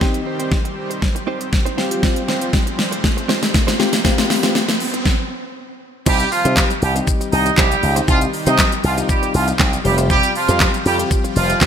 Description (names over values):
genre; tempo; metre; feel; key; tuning
dance-pop; 119 BPM; 4/4; straight; C minor; A4 = 440 Hz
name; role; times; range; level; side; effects
soft electric-piano-like synth keys; accompaniment; 0.0-11.5 s; G3 to G4; -24 LUFS; left 4 dB; chorus, tremolo, sidechain pumping
supersaw pad; sustained chords; 0.0-11.7 s; C3 to C5; -28 LUFS; equal; sidechain pumping
direct-recorded clean electric guitar; riff; 0.0-11.7 s; C4 to C5; -26 LUFS; right 7 dB; wide subtle chorus
pop drum kit; drums; 0.0-11.7 s; crash cymbal, handclaps, hi-hat, kick drum, shaker, snare drum; -17 LUFS; equal; gated reverb
riser; sound effects; 0.8-5.1 s; none; -28 LUFS; right 2 dB; none
clear horn section; melody; 6.1-11.7 s; F3 to Eb5; -19 LUFS; right 2 dB; sidechain pumping, digital delay
slap bass with an envelope filter; bass; 6.1-11.7 s; F1 to C3; -19 LUFS; equal; sidechain pumping
room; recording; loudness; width
light reverb; bright 1980s-style digital production; -15 LUFS; side -8 dB against mid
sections
0.0-6.1 A section; 6.1-11.7 B section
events
build-up 0.0-6.1; drum fill 0.0-5.1; riser 0.8-6.1; stop 5.1-6.1; drop 6.1-11.7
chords
0.0 Cm; 1.8 Fsus2; 6.1 Cm; 9.8 Fsus2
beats
| 0.01 0.52 1.02 1.53 | 2.03 2.54 3.04 3.54 | 4.05 4.55 5.06 5.56 | 6.07 6.57 7.07 7.58 | 8.08 8.59 9.09 9.60 | 10.10 10.60 11.11 11.61